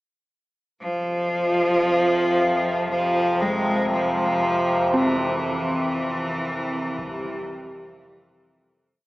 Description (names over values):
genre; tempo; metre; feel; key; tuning
dark ambient drone; 58 BPM; 4/4; straight; unclear; A4 = 440 Hz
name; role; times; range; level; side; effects
bright cello; melody; 0.8-8.0 s; E3 to Ab3; -22 LUFS; equal; tape echo
dark analog pad; sustained chords; 0.8-9.1 s; E3 to G5; -27 LUFS; equal; chorus
overtone-sweeping drone; drone; 1.1-9.1 s; F2 to C3; -28 LUFS; equal; chorus, built-in reverb
metallic inharmonic drone; texture; 2.9-9.1 s; Bb4; -39 LUFS; right 1 dB; none
dark detuned synth bell; arpeggios; 4.9-9.1 s; C4; -28 LUFS; equal; chorus
concert bass drum; percussion; 7.0-7.2 s; none; -45 LUFS; equal; low-pass filter on kick
room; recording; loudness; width
wet cathedral reverb, RT60 6.0 s; small speaker sound; -20 LUFS; side -18 dB against mid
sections
0.8-9.1 A section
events
fade-out 4.9-9.1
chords
0.8 F5; 4.9 C